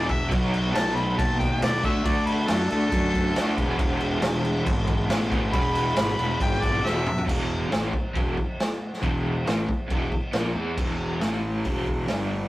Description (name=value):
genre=garage rock duo or trio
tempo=138 BPM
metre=4/4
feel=straight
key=E major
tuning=A4 = 439 Hz
part: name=clear harmonica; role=melody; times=0.0-7.3 s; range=A4 to B5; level=-28 LUFS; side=left 1 dB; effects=overdrive
part: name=crunchy overdriven guitar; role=riff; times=0.0-12.5 s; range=E2 to G#4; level=-28 LUFS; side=equal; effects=tremolo
part: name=fuzz fingered electric bass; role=bass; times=0.0-12.5 s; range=E1 to F#2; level=-27 LUFS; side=equal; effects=overdrive
part: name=raw garage drum kit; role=drums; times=0.1-12.2 s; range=crash cymbal, hi-hat, kick drum, snare drum, toms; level=-26 LUFS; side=equal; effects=none
room=moderate studio ambience, RT60 0.5 s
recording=rough rehearsal-room recording, warm saturation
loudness=-22 LUFS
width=side -17 dB against mid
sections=0.0-7.3 A section; 7.3-10.8 B section; 10.8-12.5 C section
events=drum fill 6.8-7.3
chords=0.3 B; 1.8 D; 3.6 E; 7.3 E5; 11.2 A5; 11.7 E5